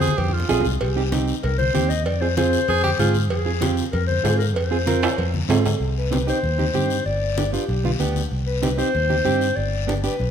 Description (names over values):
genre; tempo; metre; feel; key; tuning
latin, cumbia; 192 BPM; 4/4; straight; C harmonic minor from 5.8 s; A4 = 440 Hz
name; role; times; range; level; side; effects
dark clarinet; melody; 0.0-10.3 s; G4 to Eb5; -25 LUFS; left 4 dB; none
clear tenor saxophone; second line; 0.0-3.2 s; F4 to Ab4; -26 LUFS; right 4 dB; none
nylon-string guitar; accompaniment; 0.0-10.2 s; B3 to Bb4; -25 LUFS; right 5 dB; none
fingered electric bass; bass; 0.0-10.3 s; G1 to Ab2; -23 LUFS; equal; none
guiro; percussion; 0.0-10.3 s; none; -34 LUFS; left 8 dB; none
congas; percussion; 0.1-10.3 s; none; -29 LUFS; left 3 dB; none
cowbell and timbales; percussion; 0.2-5.7 s; none; -28 LUFS; right 5 dB; none
room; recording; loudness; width
moderate recital hall reverb, RT60 1.7 s; minimal, uncompressed stereo recording; -19 LUFS; side -8 dB against mid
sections
0.0-5.8 A section; 5.8-10.3 B section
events
drum fill 0.0-0.8, 5.0-5.8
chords
0.0 Fm; 0.8 Cm; 2.1 Fm; 5.8 Cm; 7.1 G7; 8.3 Cm; 9.6 G